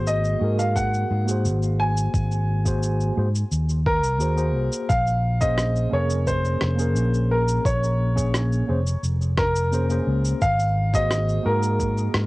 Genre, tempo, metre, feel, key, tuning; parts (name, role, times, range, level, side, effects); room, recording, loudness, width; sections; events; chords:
sunset chillout; 87 BPM; 4/4; straight; A4 = 441 Hz
clear grand piano; melody; 0.0-12.3 s; Bb4 to Ab5; -26 LUFS; equal; tape echo, plate reverb
tine electric piano; accompaniment; 0.0-12.3 s; Bb3 to Db5; -28 LUFS; equal; medium stereo tremolo, auto-pan, low-pass filter, cassette tape
fingered electric bass; bass; 0.0-12.3 s; F1 to Ab2; -22 LUFS; equal
electronic shaker and rim click; drums; 0.1-12.3 s; -30 LUFS; equal; overdrive, cassette tape
electronic kick drum; drums; 0.8-11.9 s; -26 LUFS; equal; overdrive, cassette tape
light reverb; home recording on cassette; -20 LUFS; side -20 dB against mid
0.0-12.3 A section
filter sweep on tine electric piano 0.0-12.3
0.0 Ab9; 4.9 Bbm9; 10.4 Ab9